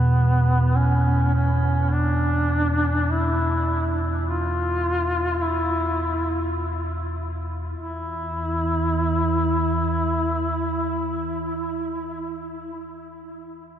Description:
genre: dark ambient drone.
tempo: free time.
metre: none.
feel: none.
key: unclear.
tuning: A4 = 440 Hz.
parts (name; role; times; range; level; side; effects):
warm duduk; melody; 0.0-12.6 s; B3 to E#4; -24 LUFS; equal; tape echo.
deep rumbling drone; drone; 0.0-12.6 s; E2 to E3; -23 LUFS; right 1 dB; built-in reverb.
room: wet huge ambient reverb, RT60 7.8 s.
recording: none.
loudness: -21 LUFS.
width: side -10 dB against mid.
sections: 0.0-7.8 A section; 7.8-12.5 B section.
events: filter sweep on synth drone 0.0-7.8.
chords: 0.0 C#m7/E (rootless); 7.8 N.C..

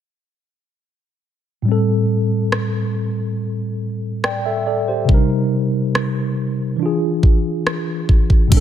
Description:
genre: contemporary R&B.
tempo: 70 BPM.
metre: 4/4.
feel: straight.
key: A phrygian.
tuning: A4 = 440 Hz.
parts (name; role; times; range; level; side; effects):
mellow tine electric piano; accompaniment; 1.6-8.6 s; A2 to G5; -18 LUFS; equal; medium stereo tremolo.
pop drum kit; drums; 2.5-8.6 s; crash cymbal, hi-hat, kick drum, rim click; -16 LUFS; equal; none.
clean 808-style bass; bass; 8.5-8.6 s; A1; -14 LUFS; right 1 dB; none.
room: light reverb.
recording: none.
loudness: -16 LUFS.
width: side -10 dB against mid.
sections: 1.7-8.5 A section.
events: none.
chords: 1.7 Am7; 5.1 Cm7; 6.8 E7b9.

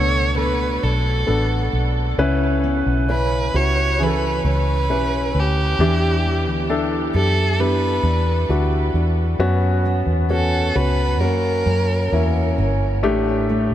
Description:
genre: pop.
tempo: 66 BPM.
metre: 4/4.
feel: straight.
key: B minor.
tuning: A4 = 440 Hz.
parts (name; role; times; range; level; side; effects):
warm violin; melody; 0.0-12.6 s; G4 to C#5; -24 LUFS; right 2 dB; ping-pong delay.
warm baby grand piano; accompaniment; 0.0-13.7 s; A2 to B4; -22 LUFS; left 3 dB; none.
fingerpicked steel-string acoustic guitar; arpeggios; 0.0-13.7 s; F#2 to G4; -28 LUFS; right 5 dB; wide subtle chorus, ping-pong delay.
vintage muted fingered electric bass; bass; 0.0-13.7 s; G1 to F#2; -20 LUFS; equal; none.
room: light reverb.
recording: none.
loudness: -17 LUFS.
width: side -11 dB against mid.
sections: 0.0-13.7 A section.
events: none.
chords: 0.0 Bm7; 2.2 C#m7b5; 5.8 Em7; 9.4 F#sus4; 11.2 F#; 13.0 A7sus4.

